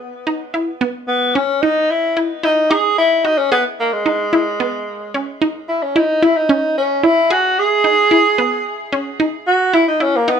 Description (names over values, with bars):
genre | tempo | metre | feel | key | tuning
progressive instrumental, progressive | 222 BPM (eighths) | 7/8 | straight | unclear | A4 = 441 Hz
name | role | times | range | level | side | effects
warm tenor saxophone | melody | 0.0-10.4 s | G#3 to G#4 | -15 LUFS | equal | ping-pong delay
resonant blip pluck | arpeggios | 0.0-10.4 s | B3 to G#4 | -18 LUFS | equal | chorus
room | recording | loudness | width
moderate studio reverb, RT60 0.6 s | none | -14 LUFS | side -7 dB against mid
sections
0.0-10.4 A section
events
tenor saxophone solo 0.0-10.4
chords
0.0 Emaj7; 4.6 C#m7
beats
0.00 0.27 0.54 | 0.81 1.08 1.35 1.62 1.90 2.17 2.44 | 2.71 2.98 3.25 3.52 3.79 4.06 4.33 | 4.60 4.87 5.14 5.41 5.68 5.96 6.22 | 6.50 6.77 7.04 7.31 7.58 7.85 8.12 | 8.39 8.66 8.93 9.20 9.47 9.74 10.01 | 10.28